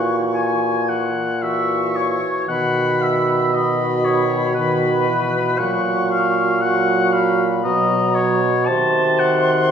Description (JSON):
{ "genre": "classical, slow romantic movement for wind quintet", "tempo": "58 BPM", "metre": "3/4", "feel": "rubato", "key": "B major, F# major from 5.6 s", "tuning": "A4 = 440 Hz", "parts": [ { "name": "silver concert flute", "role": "melody", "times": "0.0-9.7 s", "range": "A#5 to C#6", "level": "-26 LUFS", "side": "left 6 dB", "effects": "none" }, { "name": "warm oboe", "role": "second line", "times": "0.0-9.7 s", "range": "B4 to A5", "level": "-21 LUFS", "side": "left 2 dB", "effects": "none" }, { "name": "clear French horn", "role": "accompaniment", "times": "0.0-9.7 s", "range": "Eb3 to F#3", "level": "-26 LUFS", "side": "equal", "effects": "none" }, { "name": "dark clarinet", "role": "accompaniment", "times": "0.0-9.7 s", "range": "F#4", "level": "-25 LUFS", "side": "right 4 dB", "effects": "none" }, { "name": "warm bassoon", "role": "bass", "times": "0.0-9.7 s", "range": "A#2 to C3", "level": "-20 LUFS", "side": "right 1 dB", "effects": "none" } ], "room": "wet scoring stage reverb, RT60 1.6 s", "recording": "heard from further back in the room", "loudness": "-16 LUFS", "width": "side -7 dB against mid", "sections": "0.0-9.7 A section", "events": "none", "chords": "0.0 F#7/A#; 2.5 B; 5.6 F#/A#; 7.6 Bmaj7; 8.7 Cdim" }